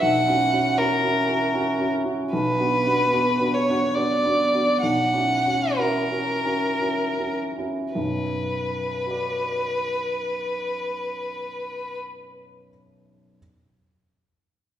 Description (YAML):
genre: classical, romantic duo for violin and grand piano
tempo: 50-80 BPM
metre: 3/4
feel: rubato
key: B minor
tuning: A4 = 440 Hz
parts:
  - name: rich violin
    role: melody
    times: 0.0-12.0 s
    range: A#4 to F#5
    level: -23 LUFS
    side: equal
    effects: none
  - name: clear baby grand piano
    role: accompaniment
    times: 0.0-13.4 s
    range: B1 to D5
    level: -25 LUFS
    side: right 1 dB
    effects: none
room: wet recital hall reverb, RT60 1.6 s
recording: heard from further back in the room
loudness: -21 LUFS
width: side -10 dB against mid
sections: 0.0-8.0 A section; 8.0-11.2 B section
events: slowing down 1.2-8.0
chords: 0.0 F#7/B; 2.3 Bm; 4.8 F#7/B; 8.0 Bm